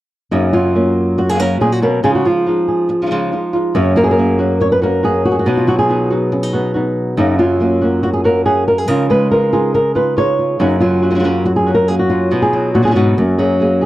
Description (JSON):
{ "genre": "flamenco", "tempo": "140 BPM", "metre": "4/4", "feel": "straight", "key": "F# major", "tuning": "A4 = 440 Hz", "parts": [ { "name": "flamenco guitar", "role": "melody", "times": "0.3-13.9 s", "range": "F#2 to C#5", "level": "-13 LUFS", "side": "equal", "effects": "none" }, { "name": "flamenco guitar", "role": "stabs", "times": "0.3-13.9 s", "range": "F#2 to G#4", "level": "-20 LUFS", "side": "equal", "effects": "none" } ], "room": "little or no reverb", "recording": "dry, close 1970s-style studio recording", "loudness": "-12 LUFS", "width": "side -15 dB against mid", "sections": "0.3-13.9 A section", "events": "none", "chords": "0.3 F#; 2.0 C#add9; 3.8 F#; 5.5 B; 7.2 F#; 8.9 C#add9; 10.6 F#; 12.3 B; 13.2 F#add9" }